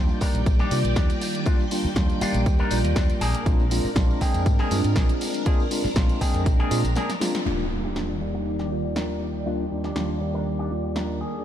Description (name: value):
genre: filtered disco house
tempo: 120 BPM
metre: 4/4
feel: swing 53% on 16ths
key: Eb major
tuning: A4 = 440 Hz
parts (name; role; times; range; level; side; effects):
- mellow tine electric piano; accompaniment; 0.0-11.2 s; Eb2 to G5; -27 LUFS; equal; phaser, sidechain pumping, low-pass filter
- string machine, full ensemble; sustained chords; 0.0-11.4 s; Eb3 to G5; -32 LUFS; right 1 dB; phaser, ensemble chorus, sidechain pumping, low-pass filter
- overdriven fingered electric bass; bass; 0.0-6.9 s; Bb1 to C3; -26 LUFS; equal; sidechain pumping, low-pass filter
- electric guitar with an envelope filter; riff; 0.1-11.4 s; Bb3 to Bb4; -33 LUFS; left 2 dB; sidechain pumping, low-pass filter
- tambourine; percussion; 0.1-7.4 s; none; -39 LUFS; left 1 dB; sidechain pumping on perc, low-pass filter on perc
- electronic kick drum; drums; 0.2-6.6 s; none; -22 LUFS; equal; overdrive
- punchy analog drum machine; drums; 0.2-11.1 s; hi-hat, snare drum; -32 LUFS; equal; none
- impact; sound effects; 7.5-9.5 s; none; -34 LUFS; equal; none
room: moderate church reverb, RT60 3.7 s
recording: dreamy mix soaked in reverb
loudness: -21 LUFS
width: side -10 dB against mid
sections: 0.0-7.5 A section; 7.5-11.4 B section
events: break 7.0-7.5; drum fill 7.0-7.5; band accent 7.3; impact 7.5-9.5; filter sweep 7.5-11.4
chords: 0.0 Ebmaj7; 3.2 Bb7; 7.5 Ebmaj7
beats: 0.46 0.96 | 1.46 1.96 2.46 2.96 | 3.46 3.96 4.46 4.96 | 5.46 5.96 6.46 6.96 | 7.46 7.96 8.46 8.96 | 9.46 9.96 10.46 10.96